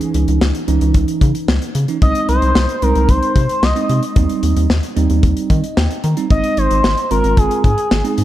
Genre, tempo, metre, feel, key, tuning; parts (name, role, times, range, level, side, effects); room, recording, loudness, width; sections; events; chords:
synth-pop; 112 BPM; 4/4; straight; Ab major; A4 = 442 Hz
bell-like tine electric piano; accompaniment; 0.0-8.2 s; Fb3 to Bb5; -20 LUFS; right 5 dB
modern studio drum kit; drums; 0.0-8.2 s; hi-hat, kick drum, snare drum; -17 LUFS; left 1 dB
rubbery square bass; bass; 0.1-8.2 s; Ab1 to Eb3; -16 LUFS; left 1 dB
expressive synth lead; melody; 2.0-8.1 s; Ab4 to Eb5; -19 LUFS; left 1 dB; chorus, analog delay
light reverb, small room ambience; dark, warm production; -13 LUFS; side -13 dB against mid
0.0-8.2 A section
tine electric piano fill 5.2-6.3
0.0 Dbmadd9; 2.0 Ab/C; 4.2 Eb6; 6.3 Ab